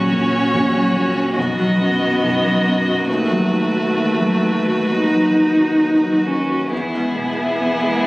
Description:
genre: classical, slow romantic movement for piano quartet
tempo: 60-71 BPM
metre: 4/4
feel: rubato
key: unclear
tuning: A4 = 440 Hz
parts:
  - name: rich violin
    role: melody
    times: 0.0-8.1 s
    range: G#4 to D#5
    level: -24 LUFS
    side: left 1 dB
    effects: none
  - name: dark cello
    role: second line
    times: 0.0-8.1 s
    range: A3 to D#4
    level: -19 LUFS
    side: equal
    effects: none
  - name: rich violin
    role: second line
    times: 0.0-8.1 s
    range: E4 to F#4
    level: -25 LUFS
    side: left 1 dB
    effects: none
  - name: warm grand piano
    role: accompaniment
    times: 0.0-8.1 s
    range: A#1 to F#4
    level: -19 LUFS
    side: equal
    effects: none
room: wet recital hall reverb, RT60 1.4 s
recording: recorded on a phone in the room, club reverb, compression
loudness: -15 LUFS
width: side -20 dB against mid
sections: 0.0-8.1 A section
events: none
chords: 0.0 F#/A#; 1.4 B; 3.1 B7/D#; 6.7 E

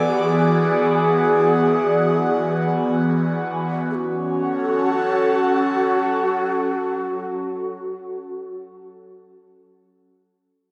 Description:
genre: ambient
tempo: free time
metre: none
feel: none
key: F# minor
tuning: A4 = 440 Hz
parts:
  - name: mellow long shakuhachi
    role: melody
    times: 0.0-8.5 s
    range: F#4 to A4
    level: -24 LUFS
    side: equal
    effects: analog delay
  - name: airy breathy pad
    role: sustained chords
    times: 0.0-8.6 s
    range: E3 to G#5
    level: -23 LUFS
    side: equal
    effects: chorus, phaser
  - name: bowed-like drone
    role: drone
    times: 2.4-8.5 s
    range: F#3 to F#4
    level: -44 LUFS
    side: equal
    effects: built-in reverb
room: wet plate reverb, RT60 2.9 s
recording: dreamy mix soaked in reverb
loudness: -20 LUFS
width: mono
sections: 0.0-3.9 A section; 3.9-7.8 B section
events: none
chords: 0.0 E7; 3.9 F#m

